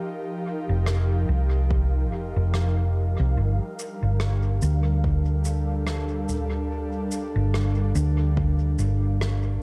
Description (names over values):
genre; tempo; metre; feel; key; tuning
ambient dub; 72 BPM; 4/4; swing 57% on 16ths; G minor; A4 = 440 Hz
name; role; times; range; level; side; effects
airy breathy pad; sustained chords; 0.0-9.6 s; F3 to F5; -33 LUFS; equal; chorus, vintage 12-bit sampler grit
hollow-body short-scale fingered electric bass; bass; 0.7-9.6 s; F1 to D2; -24 LUFS; equal; tube saturation
soft-mallet drum kit; drums; 0.9-9.4 s; rim click, shaker, toms; -36 LUFS; equal; dub echo
electronic kick drum; drums; 1.7-8.6 s; none; -30 LUFS; equal; overdrive
room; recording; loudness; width
small room ambience; dark, warm production; -24 LUFS; mono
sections
0.0-9.6 A section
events
none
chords
0.0 F9sus4; 3.4 Gm9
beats
| 0.04 0.87 1.70 2.54 | 3.37 4.20 5.04 5.87 | 6.70 7.54 8.37 9.20